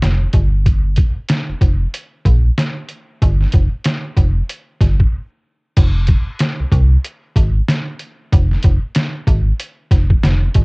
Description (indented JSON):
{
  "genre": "hip hop, boom-bap hip-hop",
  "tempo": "94 BPM",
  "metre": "4/4",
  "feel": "swing 59% on 16ths",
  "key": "F minor",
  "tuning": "A4 = 440 Hz",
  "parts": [
    { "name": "metallic FM bass", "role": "bass", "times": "0.0-10.6 s", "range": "F1 to C2", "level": "-14 LUFS", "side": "equal", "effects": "none" },
    { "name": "trip hop sampler-style drum kit", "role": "drums", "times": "0.0-10.6 s", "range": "crash cymbal, hi-hat, kick drum, snare drum", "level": "-15 LUFS", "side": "equal", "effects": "cassette tape" }
  ],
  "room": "little or no reverb",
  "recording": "home recording on cassette",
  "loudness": "-13 LUFS",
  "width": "side -36 dB against mid",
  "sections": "0.0-5.8 A section; 5.8-10.6 B section",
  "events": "break 5.1-5.8",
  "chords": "none"
}